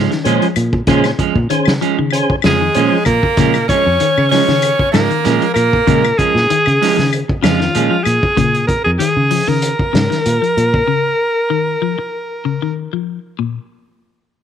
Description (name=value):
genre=afrobeat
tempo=96 BPM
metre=4/4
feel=swing 54% on 16ths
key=Bb minor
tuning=A4 = 440 Hz
part: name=clean electric guitar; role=arpeggios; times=0.0-13.6 s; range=Bb2 to F3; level=-20 LUFS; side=left 11 dB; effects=none
part: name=clean electric guitar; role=stabs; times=0.0-8.3 s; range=F3 to Db4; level=-19 LUFS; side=right 12 dB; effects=none
part: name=fingered electric bass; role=bass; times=0.0-10.8 s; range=F2 to Db3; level=-17 LUFS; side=equal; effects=none
part: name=vintage drum kit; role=drums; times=0.1-10.9 s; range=hi-hat, kick drum, snare drum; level=-19 LUFS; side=equal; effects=none
part: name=percussive tonewheel organ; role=accompaniment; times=0.2-3.0 s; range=Db4 to C5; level=-19 LUFS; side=equal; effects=slow rotary speaker
part: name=claves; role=percussion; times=0.6-8.2 s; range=none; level=-24 LUFS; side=left 15 dB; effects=none
part: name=bright alto saxophone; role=melody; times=2.5-12.8 s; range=F4 to Db5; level=-16 LUFS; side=equal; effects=none
part: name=edgy tenor saxophone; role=second line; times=2.5-6.1 s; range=Ab3 to Db4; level=-22 LUFS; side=right 12 dB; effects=none
room=moderate spring reverb, RT60 1.6 s, small room ambience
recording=1960s-style stereo with parts hard left and right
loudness=-12 LUFS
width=side -9 dB against mid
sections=0.0-13.4 A section; 13.4-14.4 B section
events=none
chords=0.0 Bbm7; 13.4 N.C.